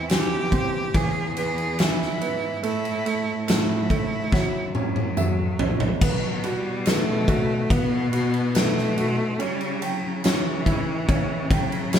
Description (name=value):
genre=pop ballad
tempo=71 BPM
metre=4/4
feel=straight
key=unclear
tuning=A4 = 438 Hz
part: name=clear cello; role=melody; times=0.0-12.0 s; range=E3 to G#4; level=-27 LUFS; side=left 1 dB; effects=none
part: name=bright upright piano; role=accompaniment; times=0.0-12.0 s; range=E3 to G5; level=-28 LUFS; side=right 5 dB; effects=none
part: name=warm studio cello section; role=bass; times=0.0-12.0 s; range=E2 to C#3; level=-30 LUFS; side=left 2 dB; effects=none
part: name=huge arena drum kit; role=drums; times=0.1-12.0 s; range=crash cymbal, kick drum, ride cymbal, snare drum, toms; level=-24 LUFS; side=left 1 dB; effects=none
part: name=tambourine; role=percussion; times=0.1-12.0 s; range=none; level=-40 LUFS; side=left 6 dB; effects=none
room=light reverb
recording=band playing live in one room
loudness=-21 LUFS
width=side -9 dB against mid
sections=0.0-6.0 A section; 6.0-12.0 A section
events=drum fill 4.3-6.0; upright piano fill 4.7-6.0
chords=0.0 C/E; 0.9 E; 2.6 A5; 4.3 F#7; 6.0 B5; 9.4 C#dim